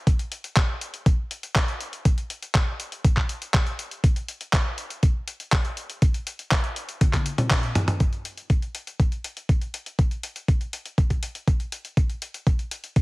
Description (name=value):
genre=italo disco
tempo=121 BPM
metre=4/4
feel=straight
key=none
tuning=none
part: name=dusty soul sampler-style drum kit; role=drums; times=0.1-13.0 s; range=handclaps, hi-hat, toms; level=-28 LUFS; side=equal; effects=none
part: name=electronic kick drum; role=drums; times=0.1-13.0 s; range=none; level=-20 LUFS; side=equal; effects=none
room=digital ambience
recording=heavily compressed radio sound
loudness=-22 LUFS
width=side -23 dB against mid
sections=0.0-8.0 A section; 8.0-13.0 B section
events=drum fill 7.0-8.0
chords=none